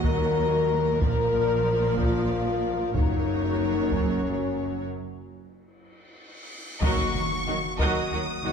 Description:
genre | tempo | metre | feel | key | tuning
cinematic, epic orchestral film score | 62 BPM (dotted quarters) | 6/8 | straight | Eb minor | A4 = 441 Hz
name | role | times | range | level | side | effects
rich symphonic violin section | melody | 0.0-8.5 s | Db5 to Eb6 | -35 LUFS | left 3 dB | none
warm symphonic violin section | second line | 0.0-8.5 s | Eb4 to Eb5 | -34 LUFS | equal | none
clear symphonic viola section | accompaniment | 0.0-8.5 s | F3 to Gb4 | -33 LUFS | right 1 dB | none
warm French horn section | sustained chords | 0.0-8.5 s | Bb3 to Bb4 | -27 LUFS | left 5 dB | none
rich symphonic cello section | bass | 0.0-8.5 s | Eb2 to Eb3 | -32 LUFS | right 4 dB | none
warm studio double bass section | bass | 0.0-8.5 s | Gb1 to Eb2 | -31 LUFS | right 3 dB | none
taiko ensemble | drums | 0.0-8.4 s | none | -29 LUFS | equal | none
cymbal swell and impact | sound effects | 5.9-8.5 s | none | -37 LUFS | equal | none
timpani | percussion | 6.8-7.8 s | Eb3 | -35 LUFS | left 1 dB | none
room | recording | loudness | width
moderate concert hall reverb, RT60 2.2 s | dark, warm production | -22 LUFS | side -7 dB against mid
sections
0.0-6.8 A section; 6.8-8.5 B section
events
break 4.9-6.8; cymbal swell 5.9-6.8; impact 6.8-8.5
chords
0.0 Ebm; 1.0 Bb; 3.0 Gb; 4.9 N.C.; 6.8 Ebm

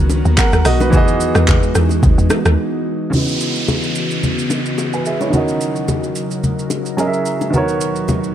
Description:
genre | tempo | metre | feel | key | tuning
amapiano | 109 BPM | 4/4 | swing 55% on 16ths | C# dorian | A4 = 439 Hz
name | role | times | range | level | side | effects
clear grand piano | accompaniment | 0.0-8.3 s | C#3 to G#5 | -20 LUFS | right 2 dB | low-pass filter
airy breathy pad | sustained chords | 0.0-8.3 s | D#2 to D#5 | -21 LUFS | left 1 dB | chorus, sidechain pumping, low-pass filter
woody log drum bass | bass | 0.0-2.6 s | B1 to E2 | -15 LUFS | equal | none
deep house drum kit | drums | 0.1-8.3 s | handclaps, hi-hat, kick drum, rim click, shaker | -18 LUFS | equal | overdrive
bongos and congas | percussion | 0.1-8.2 s | none | -22 LUFS | left 1 dB | none
downlifter | sound effects | 3.1-7.5 s | none | -25 LUFS | right 1 dB | none
room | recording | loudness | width
little or no reverb | none | -14 LUFS | side -10 dB against mid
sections
0.0-3.1 A section; 3.1-8.3 B section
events
drop 0.0-3.1; break 2.6-3.1; filter sweep 3.1-8.3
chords
0.0 Bmaj7; 0.9 Emaj9; 3.1 C#m11; 5.3 D#m7; 7.0 F#7; 7.5 Bmaj7/D#

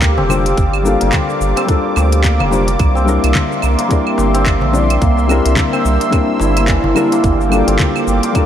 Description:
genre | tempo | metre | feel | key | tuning
organic downtempo | 108 BPM | 4/4 | swing 58% on 16ths | G dorian | A4 = 440 Hz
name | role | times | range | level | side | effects
felt-muted upright piano | accompaniment | 0.0-8.5 s | G3 to D5 | -20 LUFS | left 5 dB | sidechain pumping, digital delay
warm analog pad | sustained chords | 0.0-8.5 s | Bb3 to E6 | -20 LUFS | right 2 dB | chorus, sidechain pumping
santur | arpeggios | 0.0-8.5 s | E3 to E4 | -19 LUFS | equal | digital delay
round analog bass | bass | 0.0-8.2 s | F1 to D2 | -16 LUFS | equal | sidechain pumping
afro-pop drum kit | drums | 0.0-8.5 s | claves, handclaps, hi-hat, shaker | -22 LUFS | right 2 dB | studio reverb
electronic kick drum | drums | 0.0-8.5 s | none | -16 LUFS | equal | studio reverb
wind-like tuned noise texture | texture | 0.1-8.5 s | D4 to D5 | -26 LUFS | left 3 dB | built-in reverb
darbuka | percussion | 0.2-8.3 s | none | -26 LUFS | left 2 dB | none
room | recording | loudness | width
light reverb | dark, warm production | -11 LUFS | side -10 dB against mid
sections
0.0-8.5 A section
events
none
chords
0.0 Gm7; 2.8 C9; 7.2 Gm7

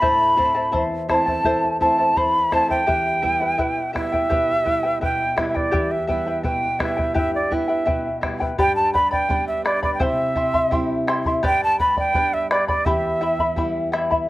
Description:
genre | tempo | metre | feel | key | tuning
andean folk, Andean ensemble | 84 BPM | 2/4 | straight | E minor | A4 = 440 Hz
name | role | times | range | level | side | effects
quena | melody | 0.0-13.9 s | D5 to B5 | -20 LUFS | right 1 dB | none
charango | accompaniment | 0.0-14.3 s | E4 to C6 | -23 LUFS | left 2 dB | slapback echo
nylon-string guitar | accompaniment | 0.0-14.3 s | E2 to E4 | -28 LUFS | right 1 dB | none
bombo | percussion | 0.0-14.3 s | none | -27 LUFS | equal | none
room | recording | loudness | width
little or no reverb | recorded outdoors, with no room sound | -18 LUFS | side -17 dB against mid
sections
0.0-8.6 A section; 8.6-14.3 B section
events
none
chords
0.0 Am; 2.9 Em; 8.6 G; 10.0 C; 11.4 G; 12.9 Em

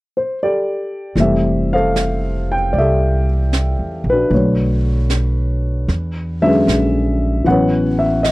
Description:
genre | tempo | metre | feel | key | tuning
jazz ballad | 76 BPM | 4/4 | swing 68% on 8ths | unclear | A4 = 440 Hz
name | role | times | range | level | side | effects
dark concert grand piano | accompaniment | 0.2-8.3 s | D3 to G5 | -16 LUFS | left 1 dB | none
upright bass | bass | 1.2-8.3 s | F1 to E2 | -18 LUFS | equal | none
jazz brush drum kit | drums | 1.2-8.3 s | brushed snare drum, hi-hat, snare drum | -24 LUFS | right 2 dB | none
room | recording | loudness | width
little or no reverb | dry, close 1970s-style studio recording | -14 LUFS | side -19 dB against mid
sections
0.0-1.2 A section; 1.2-8.3 B section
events
none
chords
0.0 Gsus24; 1.2 Fmaj9; 4.3 Bm7; 5.9 E13; 7.5 A69

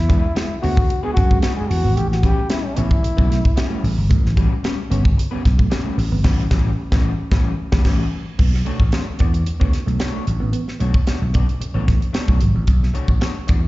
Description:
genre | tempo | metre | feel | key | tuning
funk | 112 BPM | 4/4 | straight | B minor | A4 = 440 Hz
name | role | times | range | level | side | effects
breathy trombone | melody | 0.0-3.8 s | C#4 to G#4 | -24 LUFS | left 2 dB | slapback echo
vintage slap bass | bass | 0.0-13.7 s | G1 to F#2 | -18 LUFS | equal | none
electric guitar through a small old amp | accompaniment | 0.1-13.6 s | G3 to D5 | -29 LUFS | left 6 dB | wide subtle chorus, slapback echo
mellow electric guitar | riff | 0.1-12.5 s | F#3 to B3 | -29 LUFS | right 6 dB | slapback echo
tight funk drum kit | drums | 0.1-13.6 s | crash cymbal, hi-hat, kick drum, snare drum | -18 LUFS | equal | none
room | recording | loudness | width
little or no reverb | live gig heard through the venue's PA, recital hall reverb, nothing above 7.7 kHz | -16 LUFS | side -18 dB against mid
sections
0.0-8.4 A section; 8.4-13.7 B section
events
band accent 6.2-8.4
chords
0.0 E9; 2.0 A13; 8.4 Bm9

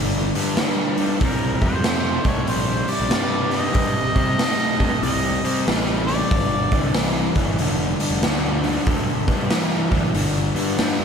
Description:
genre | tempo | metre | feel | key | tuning
blues rock power trio and southern rock | 94 BPM | 4/4 | swing 64% on 8ths | G minor | A4 = 440 Hz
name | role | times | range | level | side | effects
overdriven electric guitar | riff | 0.0-11.0 s | G2 to A3 | -23 LUFS | equal | spring reverb
fuzz picked electric bass | bass | 0.0-11.0 s | F1 to C3 | -26 LUFS | equal | overdrive
raw garage drum kit | drums | 0.3-11.0 s | hi-hat, kick drum, snare drum | -22 LUFS | equal | none
mellow harmonica | melody | 1.2-6.9 s | Bb4 to Eb5 | -26 LUFS | equal | overdrive, slapback echo
room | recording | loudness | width
moderate lush hall reverb, RT60 2.5 s | big arena sound | -18 LUFS | side -6 dB against mid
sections
0.0-11.0 A section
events
none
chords
0.0 G5; 1.2 Cm; 6.3 G5

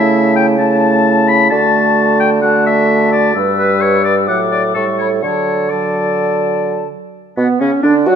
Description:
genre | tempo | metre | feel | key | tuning
quick classical-period movement for wind quintet | 129 BPM | 4/4 | straight | D major | A4 = 439 Hz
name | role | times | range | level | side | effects
mellow concert flute | melody | 0.0-8.2 s | D5 to E6 | -20 LUFS | left 12 dB | none
clear oboe | second line | 0.0-8.2 s | B3 to B5 | -17 LUFS | left 4 dB | none
warm French horn | accompaniment | 0.0-8.2 s | F#3 to F#4 | -18 LUFS | right 1 dB | none
warm clarinet | accompaniment | 0.0-8.2 s | B3 to B4 | -19 LUFS | right 8 dB | none
warm bassoon | bass | 0.0-8.2 s | G2 to F#3 | -16 LUFS | right 2 dB | none
room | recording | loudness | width
moderate scoring stage reverb, RT60 1.6 s | none | -11 LUFS | side -8 dB against mid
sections
0.0-7.1 A section; 7.1-8.2 B section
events
none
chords
0.0 A/C#; 1.5 D; 3.4 Em/G; 4.3 D/A; 4.8 A7; 5.2 D

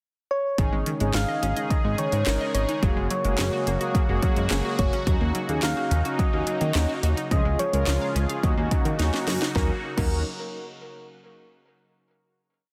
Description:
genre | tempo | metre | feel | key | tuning
synth-pop | 107 BPM | 4/4 | straight | Eb minor | A4 = 440 Hz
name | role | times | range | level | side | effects
soft struck synth lead | melody | 0.3-10.2 s | Bb4 to F5 | -32 LUFS | equal | chorus, digital delay
analog synth brass | accompaniment | 0.6-10.2 s | Bb3 to Bb4 | -34 LUFS | equal | chorus
sweeping resonant pad | sustained chords | 0.6-9.8 s | Db3 to Ab4 | -35 LUFS | equal | chorus
analog pluck | arpeggios | 0.6-10.2 s | Eb3 to F5 | -36 LUFS | equal | chorus, digital delay
chorused synth bass | bass | 0.6-10.2 s | Gb1 to Eb3 | -28 LUFS | equal | none
house drum kit | drums | 0.6-10.1 s | crash cymbal, handclaps, hi-hat, kick drum, snare drum | -29 LUFS | equal | overdrive
room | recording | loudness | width
light reverb | dense, heavily limited modern master | -24 LUFS | mono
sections
0.0-0.6 pickup bar; 0.6-9.6 chorus; 9.6-11.8 final chord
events
drum fill 9.0-9.6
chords
0.0 N.C.; 0.6 Absus4; 2.8 Gbadd9; 5.1 Ebm7; 7.3 Db; 8.4 Ebm7

